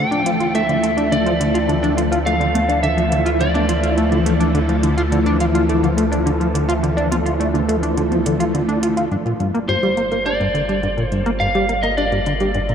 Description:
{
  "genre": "ambient, sequencer-driven space music",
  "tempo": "105 BPM",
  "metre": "4/4",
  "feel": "straight",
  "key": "G minor from 9.1 s",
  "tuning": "A4 = 440 Hz",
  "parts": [
    { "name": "lightly driven lead guitar", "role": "melody", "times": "0.0-3.9, 9.7-12.7 s", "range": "C5 to G5", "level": "-21 LUFS", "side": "equal", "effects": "wide subtle chorus, tape echo" },
    { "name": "phased string machine", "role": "sustained chords", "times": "0.0-12.7 s", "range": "E3 to A4", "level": "-20 LUFS", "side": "equal", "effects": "ensemble chorus, phaser" },
    { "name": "plucky analog bass", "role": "riff", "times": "0.0-12.7 s", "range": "G2 to F4", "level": "-20 LUFS", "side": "equal", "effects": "analog chorus, tape echo" },
    { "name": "warm sub bass", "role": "bass", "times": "0.0-12.7 s", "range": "G1 to D2", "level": "-24 LUFS", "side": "equal", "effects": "none" },
    { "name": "electronic hi-hat and congas", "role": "percussion", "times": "0.1-12.7 s", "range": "none", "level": "-32 LUFS", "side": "right 3 dB", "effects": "tape echo" },
    { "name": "bubbling stepped-filter texture", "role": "texture", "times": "9.1-12.7 s", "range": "none", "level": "barely audible", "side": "none", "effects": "none" }
  ],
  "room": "wet cathedral reverb, RT60 5.6 s",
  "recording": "dreamy mix soaked in reverb",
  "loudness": "-16 LUFS",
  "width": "side -8 dB against mid",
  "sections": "0.0-9.1 A section; 9.1-12.7 B section",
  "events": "none",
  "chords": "0.0 Dmadd9; 9.1 Gm7",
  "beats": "0.55 1.12 1.69 | 2.26 2.83 3.40 3.98 | 4.55 5.12 5.69 6.26 | 6.83 7.40 7.97 8.55 | 9.12 9.69 10.26 10.83 | 11.40 11.97 12.55"
}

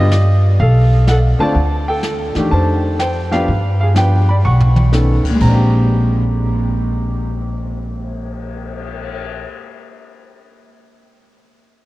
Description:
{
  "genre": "jazz piano trio",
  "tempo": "124 BPM",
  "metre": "4/4",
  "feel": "swing 67% on 8ths",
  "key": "Bb mixolydian",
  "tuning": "A4 = 436 Hz",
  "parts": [
    { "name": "warm grand piano", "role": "melody", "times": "0.0-9.6 s", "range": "Bb2 to C#6", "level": "-18 LUFS", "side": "equal", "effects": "analog delay" },
    { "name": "upright bass", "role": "bass", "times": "0.0-9.4 s", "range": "Bb1 to G2", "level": "-14 LUFS", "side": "equal", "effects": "none" },
    { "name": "jazz brush drum kit", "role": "drums", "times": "0.1-9.2 s", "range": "brushed snare drum, crash cymbal, cymbal swell, hi-hat, kick drum, snare drum, toms", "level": "-25 LUFS", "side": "equal", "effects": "none" }
  ],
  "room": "moderate huge ambient reverb, RT60 6.9 s",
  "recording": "dreamy mix soaked in reverb, cassette tape",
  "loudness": "-12 LUFS",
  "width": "side -18 dB against mid",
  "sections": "0.0-5.4 A section; 5.4-9.3 B section",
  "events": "drum fill 4.4-4.9",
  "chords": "0.0 N.C.; 0.6 Bm7b5; 1.6 D5; 2.5 F13; 3.5 G7; 4.4 B9; 5.4 Bb13",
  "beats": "0.11 0.59 1.07 | 1.55 2.04 2.52 3.00 | 3.48 3.96 4.45 4.93 | 5.41 5.89 6.37 6.86 | 7.34 7.82 8.30 8.78"
}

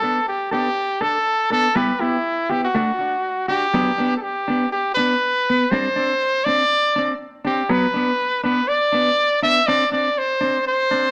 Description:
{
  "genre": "highlife",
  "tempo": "121 BPM",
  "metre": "4/4",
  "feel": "swing 55% on 16ths",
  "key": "G major",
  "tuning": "A4 = 444 Hz",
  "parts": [
    { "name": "clear trumpet", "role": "melody", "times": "0.0-11.1 s", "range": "E4 to E5", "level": "-21 LUFS", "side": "equal", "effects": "none" },
    { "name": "clean electric guitar", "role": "accompaniment", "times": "0.0-11.1 s", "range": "F#3 to A4", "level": "-25 LUFS", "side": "equal", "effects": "spring reverb" }
  ],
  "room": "moderate studio reverb, RT60 0.7 s",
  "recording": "none",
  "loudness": "-20 LUFS",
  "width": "mono",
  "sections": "0.0-3.7 A section; 3.7-11.1 B section",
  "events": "none",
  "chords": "0.0 Gadd9; 1.8 G6; 2.8 D; 3.7 G; 5.7 Csus2; 7.7 Bm; 9.7 Csus2",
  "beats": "0.27 0.77 1.26 | 1.76 2.25 2.75 3.25 | 3.74 4.24 4.73 5.23 | 5.72 6.22 6.71 7.21 | 7.70 8.20 8.69 9.18 | 9.68 10.17 10.66"
}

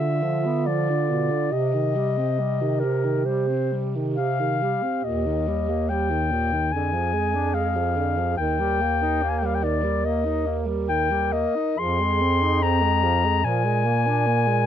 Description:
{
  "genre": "classical, lyrical piece for single-reed quartet",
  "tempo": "70 BPM",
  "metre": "4/4",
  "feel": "uneven beats, rubato",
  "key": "unclear",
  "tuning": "A4 = 440 Hz",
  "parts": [
    { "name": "warm clarinet", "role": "melody", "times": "0.0-14.7 s", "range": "Bb4 to C6", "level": "-25 LUFS", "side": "left 6 dB", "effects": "none" },
    { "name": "mellow alto saxophone", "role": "second line", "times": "0.0-14.7 s", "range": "F4 to Bb4", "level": "-29 LUFS", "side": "right 14 dB", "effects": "none" },
    { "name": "mellow tenor saxophone", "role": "accompaniment", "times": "0.0-14.7 s", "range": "Bb2 to Eb4", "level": "-28 LUFS", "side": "equal", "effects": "none" },
    { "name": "warm bass clarinet", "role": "bass", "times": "0.0-14.7 s", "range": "Eb2 to D3", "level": "-25 LUFS", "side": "right 2 dB", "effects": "none" }
  ],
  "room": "light reverb",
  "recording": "close, detailed microphones",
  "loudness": "-21 LUFS",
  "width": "side -9 dB against mid",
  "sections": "0.0-14.7 A section",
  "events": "none",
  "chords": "0.0 Bdim; 1.5 Cm; 5.0 Eb; 6.7 Ddim/F; 8.4 Eb; 11.8 Fm7; 13.4 Bb7",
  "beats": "0.66 | 1.52 2.38 3.24 4.17 | 5.05 5.90 6.73 7.55 | 8.39 9.22 10.05 10.88 | 11.79 12.63 13.45 14.27"
}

